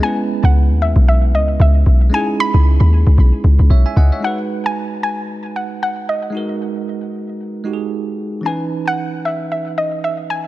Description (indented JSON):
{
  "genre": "amapiano",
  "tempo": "114 BPM",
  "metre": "4/4",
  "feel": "swing 58% on 16ths",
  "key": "G# minor",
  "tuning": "A4 = 442 Hz",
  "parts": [
    { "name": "soft round pluck", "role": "melody", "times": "0.0-10.5 s", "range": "D#5 to B5", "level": "-21 LUFS", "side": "equal", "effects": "chorus, tape echo" },
    { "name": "bell-like tine electric piano", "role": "accompaniment", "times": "0.0-10.5 s", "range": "E3 to G#5", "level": "-22 LUFS", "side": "moving between left 2 dB and right 7 dB", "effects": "auto-pan" },
    { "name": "deep log drum bass", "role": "bass", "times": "0.4-4.1 s", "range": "B1 to D#2", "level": "-10 LUFS", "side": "equal", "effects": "none" }
  ],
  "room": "little or no reverb",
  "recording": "none",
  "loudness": "-14 LUFS",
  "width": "side -16 dB against mid",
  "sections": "0.0-4.2 A section; 4.2-10.5 B section",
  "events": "drop 0.0-4.2",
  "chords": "0.0 C#m9; 4.2 G#m7; 8.4 C#m9",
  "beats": "| 0.02 0.55 1.07 1.60 | 2.13 2.65 3.18 3.71 | 4.23 4.76 5.28 5.81 | 6.34 6.86 7.39 7.92 | 8.44 8.97 9.49 10.02"
}